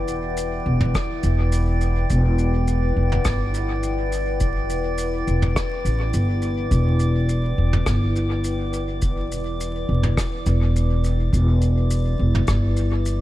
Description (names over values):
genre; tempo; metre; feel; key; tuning
ambient dub; 104 BPM; 4/4; straight; E minor; A4 = 440 Hz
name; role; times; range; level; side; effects
deep dark ambient pad; sustained chords; 0.0-13.2 s; E4 to G5; -28 LUFS; left 3 dB; chorus, built-in reverb
upright bass; bass; 0.0-13.2 s; E1 to A1; -20 LUFS; equal; none
drifting glass-harmonics texture; texture; 0.0-13.2 s; D5; -33 LUFS; right 3 dB; chorus, built-in reverb
soft brush drum kit; drums; 0.1-13.2 s; rim click, shaker, toms; -28 LUFS; equal; dub echo
electronic kick drum; drums; 0.9-12.6 s; none; -25 LUFS; equal; none
room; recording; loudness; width
studio reverb; vinyl crackle; -19 LUFS; side -15 dB against mid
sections
0.0-13.2 A section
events
none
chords
0.0 Em7